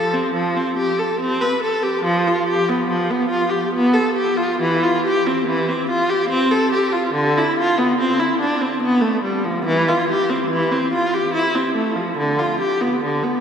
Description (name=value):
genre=classical, baroque-style suite movement for unaccompanied viola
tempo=71 BPM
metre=3/4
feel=rubato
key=C major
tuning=A4 = 440 Hz
part: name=rich viola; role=solo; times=0.0-13.4 s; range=D3 to B4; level=-16 LUFS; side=equal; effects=none
room=wet cathedral reverb, RT60 4.9 s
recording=recorded in a church or concert hall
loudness=-17 LUFS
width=side -7 dB against mid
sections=0.0-13.4 A section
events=none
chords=none